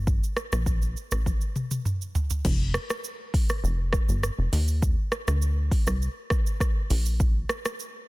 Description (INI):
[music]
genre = afrobeats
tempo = 101 BPM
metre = 4/4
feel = straight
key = F mixolydian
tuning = A4 = 435 Hz
[part]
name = plucky analog bass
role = bass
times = 0.0-7.4 s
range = F1 to Eb2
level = -25 LUFS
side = equal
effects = none
[part]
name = afro-pop drum kit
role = drums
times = 0.1-7.9 s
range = crash cymbal, hi-hat, kick drum, rim click, shaker, toms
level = -26 LUFS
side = equal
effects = soft clipping on snare
[sound]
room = little or no reverb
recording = dense, heavily limited modern master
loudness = -24 LUFS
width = side -21 dB against mid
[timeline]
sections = 0.0-2.4 A section; 2.4-8.1 B section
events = drum fill 1.3-2.4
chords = none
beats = | 0.07 0.67 1.26 1.85 | 2.45 3.04 3.64 4.23 | 4.82 5.42 6.01 6.61 | 7.20 7.79